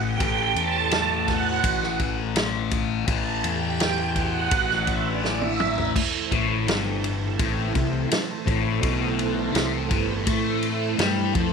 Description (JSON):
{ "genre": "psychedelic rock", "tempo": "83 BPM", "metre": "4/4", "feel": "straight", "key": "A dorian", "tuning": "A4 = 442 Hz", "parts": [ { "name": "string machine, full ensemble", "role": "sustained chords", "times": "0.0-11.5 s", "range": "A3 to A5", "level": "-26 LUFS", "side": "right 14 dB", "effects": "ensemble chorus" }, { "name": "thick fuzz guitar", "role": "riff", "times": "0.0-11.5 s", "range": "G2 to A3", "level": "-26 LUFS", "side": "left 12 dB", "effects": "distortion, phaser" }, { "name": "fuzz fingered electric bass", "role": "bass", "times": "0.0-11.5 s", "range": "G1 to A2", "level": "-29 LUFS", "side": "equal", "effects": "overdrive" }, { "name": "vintage drum kit", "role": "drums", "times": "0.2-11.5 s", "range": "crash cymbal, kick drum, ride cymbal, snare drum, toms", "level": "-27 LUFS", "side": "equal", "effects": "none" } ], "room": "light reverb, small room reverb", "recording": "1960s-style stereo with parts hard left and right", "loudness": "-21 LUFS", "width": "side -6 dB against mid", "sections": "0.0-6.0 A section; 6.0-11.5 B section", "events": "string machine solo 0.0-6.0; drum fill 5.2-6.0", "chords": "0.0 A5; 6.0 Am" }